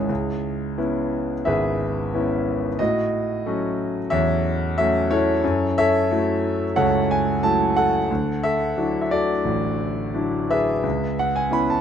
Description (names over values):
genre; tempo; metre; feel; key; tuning
classical, lyrical solo piano; 89 BPM; 4/4; rubato; C# minor; A4 = 437 Hz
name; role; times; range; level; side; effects
clear concert grand piano; solo; 0.0-11.8 s; G#1 to B5; -20 LUFS; equal; none
room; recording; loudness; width
light reverb; close, detailed microphones; -20 LUFS; side -8 dB against mid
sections
0.1-11.8 A section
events
none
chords
0.1 C#m7; 2.8 A6; 5.4 F#m7; 8.1 Dadd9; 10.8 C#m7